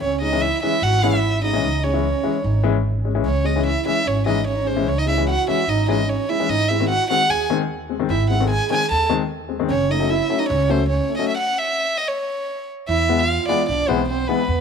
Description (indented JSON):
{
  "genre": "klezmer",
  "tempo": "149 BPM",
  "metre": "4/4",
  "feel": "straight",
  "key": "C# harmonic minor",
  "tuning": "A4 = 441 Hz",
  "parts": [
    { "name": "rich violin", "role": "melody", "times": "0.0-14.6 s", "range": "B4 to A5", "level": "-22 LUFS", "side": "equal", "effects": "none" },
    { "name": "mellow trombone", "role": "second line", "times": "0.0-14.6 s", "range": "B3 to A4", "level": "-25 LUFS", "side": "right 12 dB", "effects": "tape echo" },
    { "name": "upright bass", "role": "bass", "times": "0.0-14.6 s", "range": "F#1 to E2", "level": "-23 LUFS", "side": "equal", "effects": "none" },
    { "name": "warm upright piano", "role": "accompaniment", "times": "0.2-14.4 s", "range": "D#3 to C#4", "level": "-23 LUFS", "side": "left 11 dB", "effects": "none" }
  ],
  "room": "moderate echo chamber reverb, RT60 2.3 s",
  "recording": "1960s-style stereo with parts hard left and right",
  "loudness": "-18 LUFS",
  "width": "side -6 dB against mid",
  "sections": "0.0-12.9 A section; 12.9-14.6 B section",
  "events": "stop 11.3-12.9",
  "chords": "0.0 C#m; 6.5 G#; 9.7 F#m; 11.3 N.C.; 12.9 E"
}